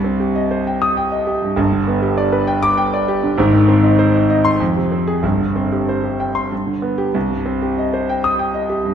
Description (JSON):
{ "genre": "classical, virtuoso piano study", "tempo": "92-101 BPM", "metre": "3/4", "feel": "rubato", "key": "C minor", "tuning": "A4 = 441 Hz", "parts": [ { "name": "warm concert grand piano", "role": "solo", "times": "0.0-8.9 s", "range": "G1 to Eb6", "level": "-15 LUFS", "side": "equal", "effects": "none" } ], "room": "wet scoring stage reverb, RT60 1.8 s", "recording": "minimal, uncompressed stereo recording", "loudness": "-15 LUFS", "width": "side -8 dB against mid", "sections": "0.0-8.9 A section", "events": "none", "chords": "0.0 Cm; 1.6 G; 3.4 Ab; 4.6 Fm; 5.2 Gsus4; 6.5 G; 7.2 Cm" }